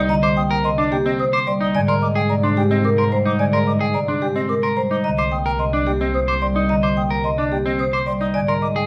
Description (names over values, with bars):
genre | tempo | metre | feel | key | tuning
classical, minimalist pattern music | 109 BPM | 3/4 | straight | C minor | A4 = 441 Hz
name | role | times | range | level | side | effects
clean electric guitar | arpeggios | 0.0-8.9 s | C4 to C5 | -26 LUFS | equal | none
warm studio double bass section | bass | 0.0-8.9 s | C2 to Ab2 | -27 LUFS | equal | none
vibraphone with medium hard mallets | melody | 0.1-8.8 s | G4 to G5 | -25 LUFS | equal | none
marimba with soft mallets | accompaniment | 0.1-8.8 s | C3 to Bb3 | -26 LUFS | equal | none
mellow silver concert flute | arpeggios | 0.1-8.8 s | Eb5 to Eb6 | -29 LUFS | equal | none
room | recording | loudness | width
wet large studio reverb, RT60 1.0 s | none | -19 LUFS | mono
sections
0.0-8.9 A section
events
none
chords
0.0 Cm7; 1.7 Abmaj9; 5.0 Cm7; 8.3 Absus2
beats
| 0.09 0.64 1.19 | 1.74 2.29 2.84 | 3.39 3.94 4.50 | 5.05 5.60 6.15 | 6.70 7.25 7.80 | 8.35